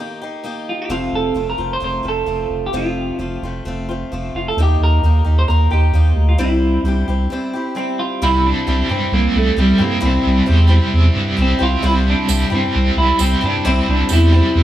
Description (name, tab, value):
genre	folk rock and heartland rock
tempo	132 BPM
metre	4/4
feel	straight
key	F mixolydian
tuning	A4 = 440 Hz
part	picked swing-style acoustic guitar	accompaniment	0.0-14.6 s	F2 to G4	-24 LUFS	left 2 dB	none
part	semi-hollow electric guitar	melody	0.7-14.6 s	G3 to C5	-20 LUFS	right 1 dB	tape echo
part	saturated sub bass	bass	0.9-14.6 s	F1 to G2	-16 LUFS	equal	none
part	biting overdriven guitar	riff	8.2-14.6 s	C3 to G4	-20 LUFS	right 2 dB	tremolo
part	bright upright piano	accompaniment	11.8-14.6 s	E4 to C5	-33 LUFS	right 1 dB	none
part	tambourine	percussion	12.3-14.2 s	none	-26 LUFS	right 11 dB	none
room	small room ambience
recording	none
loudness	-14 LUFS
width	side -12 dB against mid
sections	0.0-8.2 A section; 8.2-14.6 B section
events	break 7.3-8.2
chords	0.0 Eb; 0.9 F; 4.6 Eb; 6.4 C